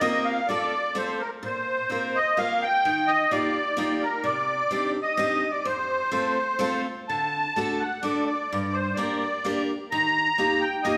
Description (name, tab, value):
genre	musette waltz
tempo	128 BPM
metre	3/4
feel	straight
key	unclear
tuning	A4 = 441 Hz
part	musette accordion	melody	0.0-11.0 s	Bb4 to Bb5	-26 LUFS	equal	none
part	picked steel-string acoustic guitar	accompaniment	0.0-11.0 s	F2 to Bb4	-31 LUFS	equal	none
room	wet recital hall reverb, RT60 1.5 s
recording	recorded in a church or concert hall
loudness	-25 LUFS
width	mono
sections	0.0-11.0 A section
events	none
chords	0.0 Fsus4; 0.5 F; 1.4 Bbsus2; 2.9 Ebadd9; 4.3 Cmadd9; 5.7 F; 7.1 D; 8.5 Gm; 9.9 Ebadd9